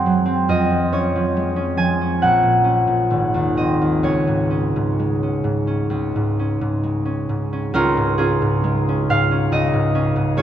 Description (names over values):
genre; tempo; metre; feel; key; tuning
classical, solo harp piece; 63-72 BPM; 4/4; rubato; Db major; A4 = 441 Hz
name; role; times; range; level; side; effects
concert harp; solo; 0.0-10.4 s; Ab1 to Ab5; -16 LUFS; equal; none
room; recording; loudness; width
wet cathedral reverb, RT60 7.3 s; none; -17 LUFS; side -10 dB against mid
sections
0.0-7.7 A section; 7.7-10.4 A section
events
none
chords
0.5 Db/F; 2.2 Gb/Bb; 3.1 Ab; 4.0 Db5; 7.7 Db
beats
| 0.48 1.34 2.20 3.09 | 4.03 4.98 5.92 6.82 | 7.73 8.64 9.52 10.36